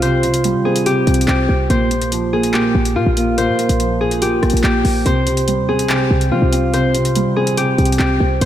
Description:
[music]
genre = hip hop, drill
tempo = 143 BPM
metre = 4/4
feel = half-time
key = unclear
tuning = A4 = 439 Hz
[part]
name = concert harp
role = melody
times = 0.0-8.5 s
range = F4 to C5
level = -18 LUFS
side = left 2 dB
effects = low-pass filter, analog delay
[part]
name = dark concert grand piano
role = accompaniment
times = 0.0-8.5 s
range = Bb2 to C4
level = -18 LUFS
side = right 2 dB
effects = analog chorus, low-pass filter
[part]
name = short 808-style bass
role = bass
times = 0.0-8.5 s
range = Bb1 to G3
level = -19 LUFS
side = equal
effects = none
[part]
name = drill drum kit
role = drums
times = 0.0-8.5 s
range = handclaps, hi-hat, rim click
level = -24 LUFS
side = left 1 dB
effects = none
[sound]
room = moderate lush hall reverb, RT60 2.0 s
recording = dreamy mix soaked in reverb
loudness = -13 LUFS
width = side -11 dB against mid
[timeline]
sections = 0.0-8.5 A section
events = none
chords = 0.0 Cm; 1.7 Bbsus2; 5.1 Cm

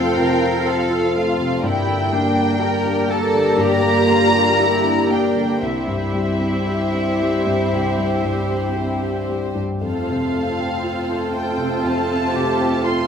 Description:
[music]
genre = cinematic, emotional film score for orchestra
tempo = 56-62 BPM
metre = 4/4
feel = rubato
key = F major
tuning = A4 = 439 Hz
[part]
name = dark symphonic violin section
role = melody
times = 0.0-13.1 s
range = E5 to C6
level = -24 LUFS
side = left 1 dB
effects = none
[part]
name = warm symphonic violin section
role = second line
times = 0.0-13.1 s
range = G4 to F5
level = -27 LUFS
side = equal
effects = none
[part]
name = dark symphonic viola section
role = accompaniment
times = 0.0-13.1 s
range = Bb3 to G4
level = -24 LUFS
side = right 2 dB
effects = none
[part]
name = warm grand piano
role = accompaniment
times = 0.0-13.1 s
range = C2 to C5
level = -22 LUFS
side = left 1 dB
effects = none
[part]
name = dark French horn section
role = sustained chords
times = 0.0-13.1 s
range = F3 to C4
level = -25 LUFS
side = left 2 dB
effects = none
[part]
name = rich symphonic cello section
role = bass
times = 0.0-13.1 s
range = D4 to Bb4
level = -24 LUFS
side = right 1 dB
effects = none
[sound]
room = wet scoring stage reverb, RT60 1.9 s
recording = none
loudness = -17 LUFS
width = side -7 dB against mid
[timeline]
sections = 0.0-13.1 A section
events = none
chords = 0.0 F; 1.7 Gm; 5.6 C; 9.8 F

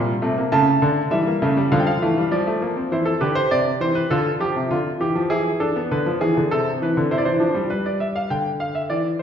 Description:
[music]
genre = classical, baroque-style 3-part fugue for grand piano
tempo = 100 BPM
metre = 4/4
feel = straight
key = unclear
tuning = A4 = 439 Hz
[part]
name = clear grand piano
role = solo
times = 0.0-9.2 s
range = Bb2 to Bb5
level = -18 LUFS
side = equal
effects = none
[sound]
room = wet recital hall reverb, RT60 1.3 s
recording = recorded in a church or concert hall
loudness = -18 LUFS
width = side -8 dB against mid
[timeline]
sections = 0.0-7.7 A section; 7.7-9.2 B section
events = none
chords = 0.0 Gm; 0.5 A7/C#; 1.7 Dm; 2.9 Am; 4.1 Dm; 5.3 E7; 6.5 Am/C; 7.7 G5

